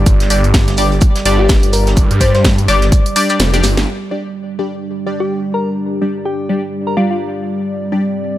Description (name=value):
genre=bass house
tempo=126 BPM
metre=4/4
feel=swing 58% on 16ths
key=unclear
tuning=A4 = 441 Hz
part: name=band-passed chord stab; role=stabs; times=0.0-8.0 s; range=G3 to D5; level=-20 LUFS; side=left 1 dB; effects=phaser, analog chorus, cassette tape, sidechain pumping, tape echo
part: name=phased detuned saw bass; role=bass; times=0.0-3.9 s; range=F1 to G2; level=-14 LUFS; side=equal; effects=phaser, tube saturation, sidechain pumping
part: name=warbly tape-like pad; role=texture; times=0.0-8.4 s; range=G3 to D6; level=-23 LUFS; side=right 1 dB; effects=chorus, built-in reverb, sidechain pumping
part: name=electronic kick drum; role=drums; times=0.1-3.0 s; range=none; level=-12 LUFS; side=equal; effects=none
part: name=house drum kit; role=drums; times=0.1-3.9 s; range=hi-hat, snare drum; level=-19 LUFS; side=right 1 dB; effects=none
part: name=vintage brush drum kit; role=drums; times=0.1-3.9 s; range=hi-hat, shaker, snare drum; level=-26 LUFS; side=right 1 dB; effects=high-pass filter on hats, high-pass filter on snare, high-pass filter on perc, high-pass filter on room
part: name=soft struck synth lead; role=melody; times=1.4-7.2 s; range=F4 to D5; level=-20 LUFS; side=left 3 dB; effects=chorus, tape echo
part: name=dark analog pad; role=sustained chords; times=4.8-8.4 s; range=G3 to D5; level=-23 LUFS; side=equal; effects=chorus, sidechain pumping
room=little or no reverb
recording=none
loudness=-12 LUFS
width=side -14 dB against mid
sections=0.0-3.9 A section; 3.9-8.4 B section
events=kick drops out 3.4-3.9; drum fill 3.5-3.9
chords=0.0 G5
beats=| 0.06 0.54 1.02 1.49 | 1.97 2.44 2.92 3.40 | 3.87 4.35 4.83 5.30 | 5.78 6.25 6.73 7.21 | 7.68 8.16